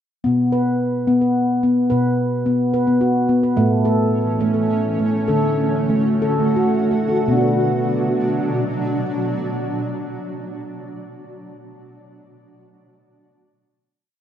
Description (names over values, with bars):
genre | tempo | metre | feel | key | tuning
world meditative, meditative tuned percussion | 54-73 BPM (dotted quarters) | 6/8 | straight | B minor | A4 = 438 Hz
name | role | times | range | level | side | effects
handpan | arpeggios | 0.2-10.4 s | A2 to B4 | -17 LUFS | equal | none
shimmering ambient pad | sustained chords | 4.2-10.3 s | B2 to F#4 | -23 LUFS | right 1 dB | chorus, built-in reverb
room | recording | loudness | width
moderate spring reverb, RT60 2.9 s | none | -16 LUFS | side -9 dB against mid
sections
0.2-7.3 A section; 7.3-11.7 final chord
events
slowing down 3.6-7.3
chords
0.2 B5; 3.6 A; 5.3 D; 7.3 Bm